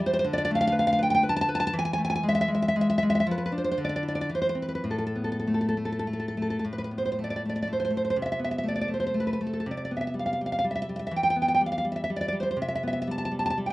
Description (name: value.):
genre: romantic piece for solo classical guitar.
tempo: 100-125 BPM.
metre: 3/4.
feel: rubato.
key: A minor.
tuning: A4 = 440 Hz.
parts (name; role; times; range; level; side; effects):
nylon-string guitar; solo; 0.0-13.7 s; A2 to A5; -24 LUFS; equal; none.
room: wet studio reverb, RT60 0.5 s.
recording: rough home demo mix, nothing above 10.3 kHz.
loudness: -24 LUFS.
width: side -18 dB against mid.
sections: 0.0-6.6 A section; 6.6-13.7 A section.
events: none.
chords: 0.2 Dm6; 1.7 E; 3.3 Bdim/F; 3.8 Dsus2; 4.3 Cmaj7/E; 4.9 Asus2; 8.2 Am/C; 9.6 C5; 11.1 Em; 12.6 C5.